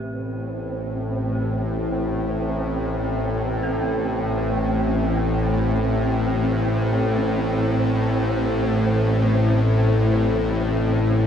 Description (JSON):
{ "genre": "dark ambient drone", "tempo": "free time", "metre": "none", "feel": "none", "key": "unclear", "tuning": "A4 = 440 Hz", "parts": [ { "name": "deep dark ambient pad", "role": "sustained chords", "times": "0.0-11.3 s", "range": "A3 to B4", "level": "-35 LUFS", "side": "equal", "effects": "none" }, { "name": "dark detuned synth bell", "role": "arpeggios", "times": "0.0-11.3 s", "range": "G4 to A4", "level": "-41 LUFS", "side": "left 1 dB", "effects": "none" }, { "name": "bowed-like drone", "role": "drone", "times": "0.0-11.3 s", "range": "A1 to A2", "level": "-20 LUFS", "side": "left 1 dB", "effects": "built-in reverb" }, { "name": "wind-like tuned noise texture", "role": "texture", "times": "0.0-11.3 s", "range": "C4", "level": "-27 LUFS", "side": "right 4 dB", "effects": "built-in reverb" } ], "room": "wet huge ambient reverb, RT60 8.3 s", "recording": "none", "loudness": "-19 LUFS", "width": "side -8 dB against mid", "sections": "0.0-11.3 A section", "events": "none", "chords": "0.0 Amadd9" }